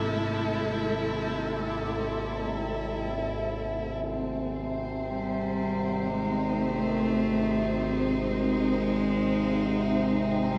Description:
dark ambient drone; 60 BPM; 4/4; straight; Ab double harmonic; A4 = 440 Hz
dark studio cello section; sustained chords; 0.0-10.6 s; Ab2 to C5; -33 LUFS; equal
overtone-sweeping drone; drone; 0.0-10.6 s; Ab1 to C3; -34 LUFS; equal; chorus, built-in reverb
flickering grainy texture; texture; 0.0-4.1 s; A3 to A4; -40 LUFS; equal; built-in reverb
rich cello; melody; 5.1-10.6 s; G3 to A3; -31 LUFS; equal; analog delay
wet plate reverb, RT60 2.4 s; echo-heavy mix; -28 LUFS; mono
0.0-4.1 A section; 4.1-10.6 A section
0.0 A5/Ab; 4.1 Ab

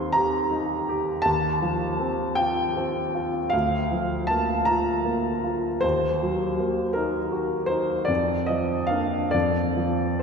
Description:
classical, romantic nocturne for solo piano; 44-56 BPM (dotted quarters); 12/8; rubato; Bb major; A4 = 440 Hz
warm grand piano; solo; 0.0-10.2 s; D2 to C6; -22 LUFS; equal
wet church reverb, RT60 3.5 s; -22 LUFS; side -5 dB against mid
0.0-10.2 A section
0.0 Cm/Eb; 1.3 F7/Eb; 3.5 Bb/D; 5.8 Ebm; 8.1 Bb/F; 9.3 N.C.

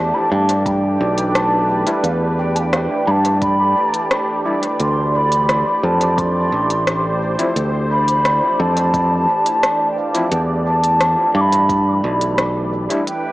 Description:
ambient dub; 87 BPM; 4/4; straight; A4 = 440 Hz
mellow hollow wooden flute; melody; 0.0-13.3 s; F5 to D6; -18 LUFS; equal; dub echo
warm analog pad; sustained chords; 0.0-13.3 s; E3 to C5; -25 LUFS; equal; chorus
fingered electric bass; bass; 0.0-12.9 s; A1 to G2; -19 LUFS; equal
bubbling stepped-filter texture; texture; 0.0-13.3 s; D5; -26 LUFS; right 3 dB; chorus, built-in reverb
organic electronic drum kit; drums; 0.5-13.2 s; hi-hat, rim click; -24 LUFS; equal; overdrive, dub echo
electronic kick drum; drums; 0.7-11.8 s; -28 LUFS; equal; overdrive
overdriven tine electric piano; stabs; 1.9-13.0 s; F3 to E4; -26 LUFS; left 1 dB; fast tremolo, dub echo
moderate lush hall reverb, RT60 1.9 s, digital ambience; small speaker sound; -14 LUFS; side -18 dB against mid
0.0-13.3 A section
break 13.1
0.0 Em7; 4.8 Dm9; 10.3 Em7

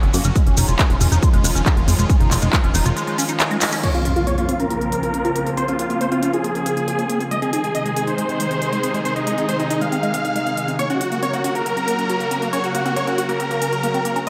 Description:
uplifting trance; 138 BPM; 4/4; straight; Bb minor; A4 = 440 Hz
supersaw pad; sustained chords; 0.0-14.3 s; Bb2 to Bb4; -27 LUFS; equal; sidechain pumping, low-pass filter
liquid acid bass; arpeggios; 0.0-14.3 s; Ab3 to Gb4; -28 LUFS; equal; phaser, sidechain pumping, tape echo
plucky analog bass; bass; 0.0-2.9 s; F1 to Gb2; -21 LUFS; equal; sidechain pumping
techno drum kit; drums; 0.0-14.3 s; crash cymbal, handclaps, hi-hat; -28 LUFS; equal
maracas; percussion; 0.1-3.8 s; -28 LUFS; equal
electronic kick drum; drums; 0.4-2.6 s; -20 LUFS; equal
big supersaw lead; melody; 3.8-14.3 s; Eb4 to F5; -24 LUFS; equal; sidechain pumping, low-pass filter, delay
impact; sound effects; 3.8-5.6 s; -27 LUFS; equal
wet plate reverb, RT60 1.6 s; dreamy mix soaked in reverb; -20 LUFS; mono
0.0-3.8 A section; 3.8-14.3 B section
filter sweep on acid bass 0.0-3.8; break 3.0-3.8; drum fill 3.6; band accent 3.6; impact 3.8-5.6; filter sweep on supersaw synth 3.8-14.3
0.4 Dbadd9/F; 3.8 Bbmadd9; 7.3 Ab; 10.8 Gb

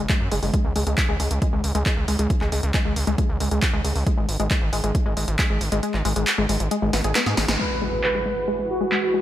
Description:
uplifting trance; 136 BPM; 4/4; straight; A4 = 443 Hz
tight sequenced synth; arpeggios; 0.0-9.2 s; G#3 to G#4; -27 LUFS; left 2 dB; chorus, sidechain pumping, digital delay
gritty driven synth bass; bass; 0.0-7.6 s; F#1 to G#2; -24 LUFS; equal; sidechain pumping
electronic kick drum; drums; 0.1-5.5 s; -22 LUFS; equal; overdrive
punchy analog drum machine; drums; 0.1-9.0 s; crash cymbal, handclaps, hi-hat, snare drum; -26 LUFS; right 1 dB; overdrive, low-pass filter on hats, low-pass filter on snare, low-pass filter on cymbals, low-pass filter on room
warm velvety synth lead; second line; 7.6-9.2 s; F#4 to B4; -23 LUFS; right 1 dB; chorus, digital delay
rich symphonic string section; sustained chords; 7.6-9.2 s; E3 to B4; -31 LUFS; right 1 dB; sidechain pumping, low-pass filter
impact; sound effects; 7.6-9.2 s; -32 LUFS; equal
light reverb, digital ambience; -20 LUFS; side -12 dB against mid
0.0-7.6 A section; 7.6-9.2 B section
kick drops out 5.8-7.6; drum fill 6.9-7.6; band accent 7.5; impact 7.6-9.2; filter sweep on synth arpeggio sound 7.6-9.2; filter sweep on string section 7.6-9.2
0.0 F#sus2; 0.5 C#5; 4.1 N.C.; 7.6 Eadd9

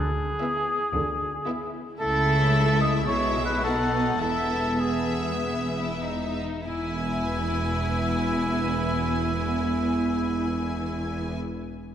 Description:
cinematic, playful, whimsical film cue; 95-113 BPM; 4/4; straight; E major; A4 = 440 Hz
mellow oboe; second line; 0.0-11.3 s; E4 to D#5; -28 LUFS; equal
rich studio cello section; bass; 0.0-11.4 s; E2 to D3; -30 LUFS; right 1 dB
rich studio double bass section; bass; 0.0-11.4 s; E1 to D2; -31 LUFS; right 1 dB
clear studio violin section; melody; 0.4-11.4 s; E5 to G#5; -35 LUFS; left 3 dB
rich studio violin section; second line; 0.4-11.4 s; B3 to E4; -35 LUFS; left 2 dB
rich studio viola section; accompaniment; 0.4-11.4 s; G#3 to B3; -32 LUFS; right 1 dB
wet concert hall reverb, RT60 2.5 s; -23 LUFS; side -9 dB against mid
0.0-6.7 A section; 6.7-11.7 B section
slowing down 0.9-6.7
0.0 E7/D; 2.0 A/C#; 3.1 E/B; 3.6 B7; 4.2 E

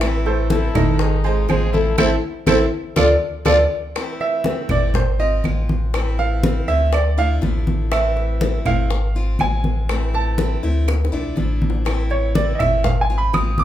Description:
latin, Cuban son and guajira; 122 BPM; 4/4; straight; A harmonic minor; A4 = 439 Hz
picked steel-string acoustic guitar; accompaniment; 0.0-13.6 s; E3 to E#4; -28 LUFS; left 2 dB
bright baby grand piano; arpeggios; 0.0-13.6 s; D#3 to D#6; -22 LUFS; right 4 dB
pure sine sub bass; bass; 0.0-13.6 s; G#1 to D2; -20 LUFS; equal
bongos; percussion; 0.0-13.6 s; -28 LUFS; left 5 dB
claves; percussion; 0.0-13.6 s; -31 LUFS; right 6 dB
congas; percussion; 0.0-13.6 s; -23 LUFS; equal
nylon-string guitar; melody; 0.5-3.6 s; E4 to D5; -20 LUFS; left 1 dB
growling trumpet; second line; 0.5-3.6 s; D#4 to G#4; -29 LUFS; left 6 dB
light reverb; band playing live in one room; -16 LUFS; side -12 dB against mid
0.0-4.0 A section; 4.0-13.6 B section
band accent 2.0-4.0; drum fill 3.2-4.0, 10.9-11.9; grand piano solo 4.0-13.6
0.0 Am; 1.0 G#6; 2.0 Am; 3.0 Dm; 4.0 Am; 5.0 G#6; 5.9 Am; 6.9 Dmadd9; 7.9 Am; 8.9 G#6; 9.9 Am; 10.9 Dmadd9; 11.9 Am; 12.8 G#6

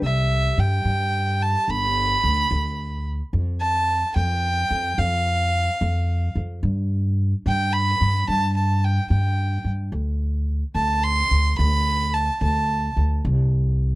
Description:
indie folk with a building arrangement; 73 BPM (dotted quarters); 6/8; straight; C major; A4 = 440 Hz
dark fiddle; melody; 0.0-13.0 s; E5 to C6; -23 LUFS; right 1 dB
fingerpicked acoustic archtop guitar; accompaniment; 0.0-1.7 s; G3; -33 LUFS; left 2 dB
upright bass; bass; 0.0-13.9 s; G1 to G2; -21 LUFS; equal
little or no reverb; dry, close 1970s-style studio recording; -19 LUFS; side -19 dB against mid
0.0-3.3 A section; 3.3-14.0 B section
0.0 C; 1.7 G; 3.3 N.C.; 9.9 D5; 13.2 C5

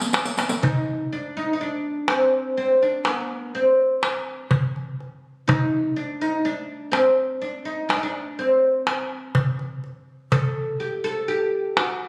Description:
Turkish makam ensemble; 124 BPM (eighths); 10/8; straight; A4 = 440 Hz
oud; melody; 0.0-12.1 s; B3-40c to A4; -24 LUFS; equal
riq; percussion; 0.0-0.6 s; -29 LUFS; equal
darbuka; percussion; 0.1-12.0 s; -25 LUFS; equal
moderate recital hall reverb, RT60 1.3 s; recorded on a phone in the room, studio ambience, compression; -23 LUFS; mono
0.6-12.1 A section
drum fill 0.0-0.6

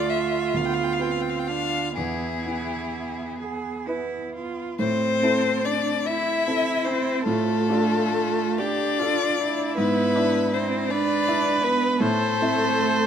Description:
classical, slow romantic movement for piano quartet; 40-55 BPM (dotted quarters); 6/8; rubato; A minor; A4 = 440 Hz
rich violin; melody; 0.0-13.1 s; G#4 to G5; -25 LUFS; left 7 dB
rich cello; second line; 0.0-13.1 s; A3 to G#4; -28 LUFS; right 7 dB
rich viola; accompaniment; 0.0-13.1 s; A3 to C5; -28 LUFS; right 3 dB
warm grand piano; accompaniment; 0.0-13.1 s; D2 to E5; -28 LUFS; right 1 dB
light reverb; close, detailed microphones; -21 LUFS; side -8 dB against mid
0.0-4.8 A section; 4.8-13.1 B section
0.0 Dm; 0.5 Bdim/D; 2.0 E; 4.8 Am; 7.3 Dm/A; 9.8 E7/G#; 12.0 Am

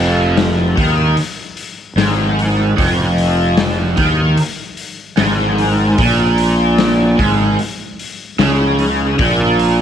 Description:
psychedelic rock; 75 BPM; 4/4; straight; F minor; A4 = 440 Hz
cranked stack guitar; riff; 0.0-9.8 s; F2 to Eb3; -14 LUFS; right 1 dB; overdrive, rotary speaker
fuzz fingered electric bass; bass; 0.0-9.8 s; F1 to Eb2; -18 LUFS; right 1 dB; overdrive
raw garage drum kit; drums; 0.4-9.8 s; hi-hat, kick drum, snare drum; -20 LUFS; left 3 dB
light reverb, small room ambience; 1960s-style stereo; -12 LUFS; side -9 dB against mid
0.0-9.8 A section
0.0 Fm; 6.0 Absus24

